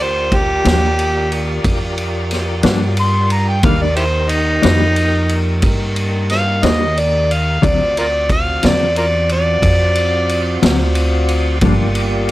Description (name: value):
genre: slow blues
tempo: 60 BPM (dotted quarters)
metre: 12/8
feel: straight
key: G minor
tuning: A4 = 439 Hz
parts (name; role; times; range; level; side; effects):
- overdriven harmonica; melody; 0.0-10.6 s; Eb4 to C6; -17 LUFS; equal; none
- tonewheel organ; sustained chords; 0.0-12.3 s; Bb3 to D5; -24 LUFS; equal; slow rotary speaker, chorus vibrato
- upright bass; bass; 0.0-12.3 s; G1 to G2; -18 LUFS; equal; none
- vintage drum kit; drums; 0.3-12.3 s; kick drum, ride cymbal, snare drum; -20 LUFS; equal; none
- mellow electric guitar; accompaniment; 0.6-11.8 s; G2 to E#4; -16 LUFS; left 3 dB; tremolo
room: little or no reverb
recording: none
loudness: -13 LUFS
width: side -16 dB against mid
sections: 0.0-12.3 A section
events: harmonica solo 0.0-12.3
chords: 0.0 Gm7; 3.6 Ebmaj7; 7.6 D7#9; 11.6 Gm7